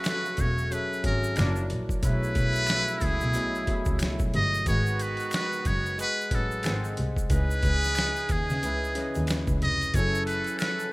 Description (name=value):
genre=R&B, neo-soul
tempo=91 BPM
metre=4/4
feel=swing 60% on 16ths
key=F# dorian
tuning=A4 = 439 Hz
part: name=trumpet with metal mute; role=melody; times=0.0-10.9 s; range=G#4 to D#5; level=-29 LUFS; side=equal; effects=none
part: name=overdriven tine electric piano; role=accompaniment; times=0.0-10.9 s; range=B2 to A5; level=-34 LUFS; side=left 1 dB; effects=none
part: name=mellow horn section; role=stabs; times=0.0-10.9 s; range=A#2 to A4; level=-36 LUFS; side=right 2 dB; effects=none
part: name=boom bap sampler-style drum kit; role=drums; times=0.0-10.8 s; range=hi-hat, kick drum, snare drum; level=-30 LUFS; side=equal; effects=none
part: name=finger snaps and egg shaker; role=percussion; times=0.0-10.9 s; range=none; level=-43 LUFS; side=equal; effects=none
part: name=rich double bass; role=bass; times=0.4-10.4 s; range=E1 to C#3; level=-28 LUFS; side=equal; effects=none
part: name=tonewheel organ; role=sustained chords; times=9.9-10.9 s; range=F#3 to G#5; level=-42 LUFS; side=equal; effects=none
room=small room ambience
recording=rough home demo mix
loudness=-24 LUFS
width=side -22 dB against mid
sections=0.0-10.9 A section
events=none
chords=0.0 F#m9; 1.4 F#7alt; 2.0 B13sus4; 4.7 G#m7; 6.6 G#7; 7.3 C#m9; 9.9 F#m9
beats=0.05 0.71 1.37 | 2.03 2.69 3.35 4.01 | 4.67 5.33 5.98 6.64 | 7.30 7.96 8.62 9.28 | 9.94 10.60